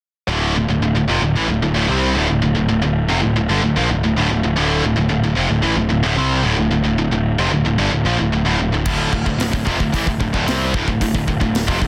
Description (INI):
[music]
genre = heavy metal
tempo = 112 BPM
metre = 4/4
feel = straight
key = D minor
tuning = A4 = 440 Hz
[part]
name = tight distorted guitar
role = riff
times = 0.3-11.9 s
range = D2 to C4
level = -24 LUFS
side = equal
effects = distortion
[part]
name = tight distorted guitar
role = riff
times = 0.3-11.9 s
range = D2 to C4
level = -22 LUFS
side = equal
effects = distortion
[part]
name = fuzz picked electric bass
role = bass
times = 0.3-11.9 s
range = D1 to C2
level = -22 LUFS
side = equal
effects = overdrive
[part]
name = big rock drum kit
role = drums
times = 8.9-11.9 s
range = crash cymbal, hi-hat, kick drum, snare drum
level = -24 LUFS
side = equal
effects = none
[sound]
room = studio reverb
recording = dense, heavily limited modern master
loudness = -18 LUFS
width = mono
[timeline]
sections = 0.3-11.9 A section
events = none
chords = 0.3 Dm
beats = | 0.29 0.82 1.36 1.90 | 2.43 2.97 3.50 4.04 | 4.57 5.11 5.65 6.18 | 6.72 7.25 7.79 8.33 | 8.87 9.40 9.94 10.48 | 11.01 11.55